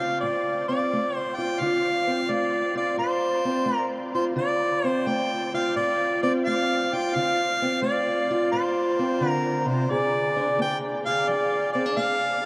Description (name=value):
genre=acoustic country blues, solo or duo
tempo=87 BPM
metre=4/4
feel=swing 67% on 8ths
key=D minor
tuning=A4 = 439 Hz
part: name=mellow harmonica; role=melody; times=0.0-12.5 s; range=C5 to G5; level=-27 LUFS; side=equal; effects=none
part: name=fingerpicked steel-string acoustic guitar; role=accompaniment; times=0.0-12.5 s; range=A2 to Ab4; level=-28 LUFS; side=equal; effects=none
room=wet huge ambient reverb, RT60 8.6 s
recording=in a vast, echoing space, vinyl crackle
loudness=-25 LUFS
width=mono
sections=0.0-12.5 A section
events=none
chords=0.0 Dm7; 9.9 Bb7